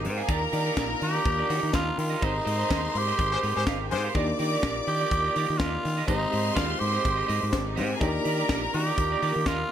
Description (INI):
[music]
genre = disco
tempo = 124 BPM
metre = 4/4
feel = swing 56% on 16ths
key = Eb major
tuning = A4 = 440 Hz
[part]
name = growling tenor saxophone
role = melody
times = 0.0-9.7 s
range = Eb4 to G4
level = -28 LUFS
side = right 2 dB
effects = none
[part]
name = clear studio string section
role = second line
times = 0.0-9.7 s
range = C4 to D6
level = -32 LUFS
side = left 1 dB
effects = none
[part]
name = clean electric guitar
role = accompaniment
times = 0.0-9.7 s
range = Eb4 to F5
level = -34 LUFS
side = right 8 dB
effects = analog chorus
[part]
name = dark French horn section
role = sustained chords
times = 0.0-9.7 s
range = Eb3 to D5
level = -36 LUFS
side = left 1 dB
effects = none
[part]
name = fingered electric bass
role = bass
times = 0.0-9.6 s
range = Ab1 to Eb3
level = -30 LUFS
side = equal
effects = none
[part]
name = tight funk drum kit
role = drums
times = 0.0-9.6 s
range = hi-hat, kick drum, snare drum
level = -31 LUFS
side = left 1 dB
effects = gated reverb
[part]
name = clear horn section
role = stabs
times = 3.3-4.1 s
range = Ab3 to C5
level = -32 LUFS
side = left 5 dB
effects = none
[part]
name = bright reed electric piano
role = accompaniment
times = 4.1-9.7 s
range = Ab3 to D5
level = -33 LUFS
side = left 3 dB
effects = fast tremolo
[sound]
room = light reverb, small room ambience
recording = none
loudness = -24 LUFS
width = side -10 dB against mid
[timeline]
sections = 0.0-9.7 A section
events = band accent 2.2-4.2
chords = 0.3 Ebmaj7; 2.2 Abmaj7; 4.2 Ebmaj7; 6.1 Abmaj7; 8.0 Ebmaj7